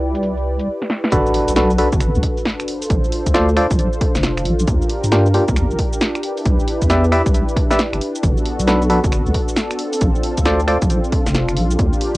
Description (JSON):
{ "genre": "UK garage, two-step garage", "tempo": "135 BPM", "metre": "4/4", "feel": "swing 64% on 16ths", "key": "unclear", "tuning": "A4 = 440 Hz", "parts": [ { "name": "warm analog pad", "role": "sustained chords", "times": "0.0-12.2 s", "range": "Bb3 to D5", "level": "-23 LUFS", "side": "equal", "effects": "chorus, sidechain pumping, cassette tape" }, { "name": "deep soft wobble bass", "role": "bass", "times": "0.0-11.9 s", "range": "F1 to G2", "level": "-18 LUFS", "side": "equal", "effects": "chorus, sidechain pumping" }, { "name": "warbly tape-like pad", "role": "texture", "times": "0.0-0.7 s", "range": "E4 to D5", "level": "-30 LUFS", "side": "right 1 dB", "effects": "chorus, built-in reverb, sidechain pumping, cassette tape" }, { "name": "punchy analog drum machine", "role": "drums", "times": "0.1-12.2 s", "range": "finger snaps, hi-hat, shaker, snare drum", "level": "-23 LUFS", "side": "equal", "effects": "low-pass filter on hats, cassette tape, low-pass filter on perc, low-pass filter on snare" }, { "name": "percussive organ stab", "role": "stabs", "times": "1.1-10.8 s", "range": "Bb3 to E5", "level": "-18 LUFS", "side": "equal", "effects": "chorus, cassette tape, analog delay" }, { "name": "electronic kick drum", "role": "drums", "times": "1.1-11.9 s", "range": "none", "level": "-19 LUFS", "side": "equal", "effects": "cassette tape" }, { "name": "impact", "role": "sound effects", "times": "1.1-2.9 s", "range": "none", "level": "-31 LUFS", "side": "equal", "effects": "none" } ], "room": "little or no reverb", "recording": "home recording on cassette", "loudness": "-15 LUFS", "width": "side -19 dB against mid", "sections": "0.0-1.1 A section; 1.1-12.2 B section", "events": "drum fill 0.8-1.1; drop 1.1-12.2; impact 1.1-2.9", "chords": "0.0 Cmaj9; 1.1 Gmaj9; 2.7 Bbmaj9; 4.7 Ebmaj9; 6.2 Cmaj9; 8.2 Gmaj9; 9.8 Bbmaj9" }